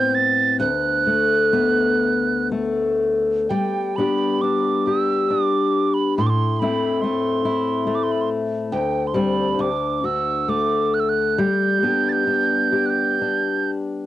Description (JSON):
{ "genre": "celtic folk, Celtic slow air", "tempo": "60-72 BPM", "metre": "3/4", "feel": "rubato", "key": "G major", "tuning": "A4 = 440 Hz", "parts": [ { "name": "mellow hollow tin whistle", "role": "melody", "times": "0.0-13.7 s", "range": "G5 to A6", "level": "-22 LUFS", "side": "right 6 dB", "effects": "none" }, { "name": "fingerpicked steel-string acoustic guitar", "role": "accompaniment", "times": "0.0-14.1 s", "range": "D2 to G4", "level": "-20 LUFS", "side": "left 3 dB", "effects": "cassette tape" } ], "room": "moderate booth ambience, RT60 0.2 s", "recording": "home recording on cassette", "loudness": "-18 LUFS", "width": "side -13 dB against mid", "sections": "0.0-3.5 A section; 3.5-14.1 B section", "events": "none", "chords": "0.0 Amadd9; 0.6 D6; 3.5 G; 6.2 Am; 8.7 D7sus4; 9.6 D; 11.4 G" }